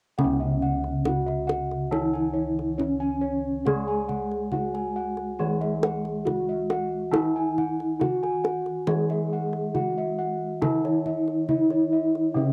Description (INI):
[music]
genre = Javanese gamelan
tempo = 69 BPM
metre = 4/4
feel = straight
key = unclear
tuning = A4 = 440 Hz
[part]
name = gamelan-type bronze metallophone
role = melody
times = 0.2-12.5 s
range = C#4 to G#4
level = -29 LUFS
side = equal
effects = plate reverb
[part]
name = gamelan-type bronze metallophone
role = accompaniment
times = 0.2-12.5 s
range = C#3 to G#3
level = -35 LUFS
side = equal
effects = cassette tape
[part]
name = gamelan-type bossed gongs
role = arpeggios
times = 0.2-12.5 s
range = C#5 to G#5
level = -35 LUFS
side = equal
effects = cassette tape, plate reverb
[part]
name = gamelan-type bossed gongs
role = bass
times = 0.2-12.5 s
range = C#2 to G#4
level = -32 LUFS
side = equal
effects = none
[part]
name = kendang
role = percussion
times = 0.2-12.3 s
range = none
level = -32 LUFS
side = equal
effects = none
[sound]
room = wet booth ambience, RT60 0.2 s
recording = home recording on cassette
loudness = -26 LUFS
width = mono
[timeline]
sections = 0.2-12.5 A section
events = none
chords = none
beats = | 0.19 1.06 1.93 2.80 | 3.67 4.54 5.40 6.27 | 7.14 8.01 8.88 9.75 | 10.62 11.49 12.36